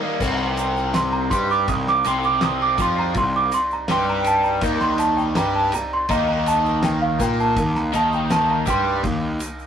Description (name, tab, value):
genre	psychedelic rock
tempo	82 BPM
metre	4/4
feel	straight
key	C dorian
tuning	A4 = 440 Hz
part	percussive tonewheel organ	sustained chords	0.0-9.7 s	Eb3 to F5	-37 LUFS	right 1 dB	none
part	overdriven electric guitar	riff	0.0-9.3 s	C3 to Bb4	-23 LUFS	left 1 dB	phaser
part	fuzz picked electric bass	bass	0.2-9.4 s	C2 to Bb2	-24 LUFS	equal	overdrive
part	deep rumbling drone	drone	0.2-9.7 s	C2	-38 LUFS	left 1 dB	built-in reverb
part	cloth-damped thuddy drum kit	drums	0.2-9.6 s	crash cymbal, kick drum, ride cymbal, snare drum	-28 LUFS	equal	none
part	egg shaker	percussion	0.2-9.7 s	none	-40 LUFS	right 3 dB	none
part	worn celesta	melody	0.9-9.0 s	F5 to Eb6	-21 LUFS	right 2 dB	none
room	wet booth ambience, RT60 0.3 s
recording	rough rehearsal-room recording, tube saturation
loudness	-18 LUFS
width	side -8 dB against mid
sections	0.2-9.7 A section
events	break 0.0; celesta solo 0.2-9.7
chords	0.2 Cm; 6.1 Eb5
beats	| 0.21 0.94 1.68 2.42 | 3.15 3.89 4.62 5.36 | 6.10 6.83 7.57 8.31 | 9.04